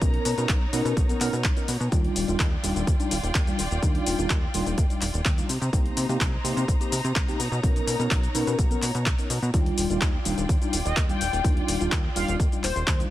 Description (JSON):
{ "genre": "filtered disco house", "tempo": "126 BPM", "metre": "4/4", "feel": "straight", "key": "Eb major", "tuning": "A4 = 439 Hz", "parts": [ { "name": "mellow tine electric piano", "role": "accompaniment", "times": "0.0-13.1 s", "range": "G3 to A#4", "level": "-29 LUFS", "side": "left 1 dB", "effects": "medium stereo tremolo, phaser, vintage 12-bit sampler grit, sidechain pumping, low-pass filter" }, { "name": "rich symphonic string section", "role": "sustained chords", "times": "0.0-13.1 s", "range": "D#4 to Bb5", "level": "-34 LUFS", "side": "equal", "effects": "sidechain pumping, low-pass filter" }, { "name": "plucky analog bass", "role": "bass", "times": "0.0-13.0 s", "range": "Eb1 to C3", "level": "-28 LUFS", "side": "equal", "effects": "sidechain pumping, low-pass filter" }, { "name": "electronic kick drum", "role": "drums", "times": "0.0-13.0 s", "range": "none", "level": "-24 LUFS", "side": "equal", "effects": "none" }, { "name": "punchy analog drum machine", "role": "drums", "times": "0.0-13.1 s", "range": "cabasa, handclaps, hi-hat", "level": "-30 LUFS", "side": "left 2 dB", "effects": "overdrive, sidechain pumping on hats, sidechain pumping on perc" }, { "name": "analog synth brass", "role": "melody", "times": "10.9-13.0 s", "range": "C5 to G5", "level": "-30 LUFS", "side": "left 3 dB", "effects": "chorus, sidechain pumping, low-pass filter" } ], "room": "little or no reverb", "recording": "none", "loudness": "-22 LUFS", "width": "side -14 dB against mid", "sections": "0.0-13.1 A section", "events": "filter sweep 0.0-13.1", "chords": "0.0 Bmaj9; 1.9 Ebmaj9; 5.5 Cm7; 7.4 Bmaj9; 9.5 Ebmaj9" }